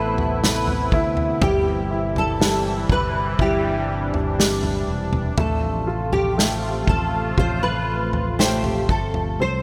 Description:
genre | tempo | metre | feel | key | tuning
pop ballad | 60 BPM | 4/4 | straight | unclear | A4 = 440 Hz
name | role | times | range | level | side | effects
nylon-string guitar | melody | 0.0-9.6 s | G4 to C5 | -27 LUFS | equal | ensemble chorus
clear baby grand piano | accompaniment | 0.0-9.6 s | G3 to F4 | -29 LUFS | equal | none
sweeping resonant pad | sustained chords | 0.0-9.6 s | C3 to F4 | -30 LUFS | equal | chorus
fingered electric bass | bass | 0.0-9.6 s | E1 to D2 | -29 LUFS | equal | none
unplugged drum kit | drums | 0.2-9.4 s | kick drum, snare drum, toms | -25 LUFS | equal | none
room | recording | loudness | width
moderate lush hall reverb, RT60 2.5 s | bright 1980s-style digital production | -21 LUFS | mono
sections
0.0-9.4 A section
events
none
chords
0.0 Amadd9; 1.4 C/G; 5.4 F/A

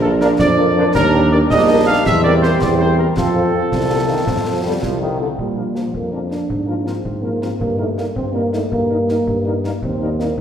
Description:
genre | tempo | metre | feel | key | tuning
military-style march for wind band | 108 BPM (dotted quarters) | 6/8 | straight | Bb major | A4 = 440 Hz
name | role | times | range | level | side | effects
dark trumpet section | melody | 0.0-10.3 s | A4 to F5 | -20 LUFS | right 1 dB | none
warm euphonium | second line | 0.0-10.4 s | F3 to G4 | -21 LUFS | right 2 dB | none
mellow French horn section | accompaniment | 0.0-10.3 s | F3 to Bb4 | -24 LUFS | left 3 dB | none
clear tuba | bass | 0.0-10.4 s | Bb1 to Bb2 | -19 LUFS | equal | none
warm trombone section | sustained chords | 0.2-5.3 s | C3 to D4 | -22 LUFS | right 1 dB | none
concert snare drum, concert bass drum and clash cymbals | drums | 0.2-10.4 s | none | -26 LUFS | left 1 dB | none
room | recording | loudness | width
wet scoring stage reverb, RT60 1.8 s | recorded in a church or concert hall | -14 LUFS | side -8 dB against mid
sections
0.0-5.4 A section; 5.4-10.4 B section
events
none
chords
0.0 Bb; 0.9 Ebmaj7; 2.1 C7/E; 3.2 F; 5.4 Bb; 6.5 Bb7/Ab; 7.6 Eb/G; 9.8 Eb

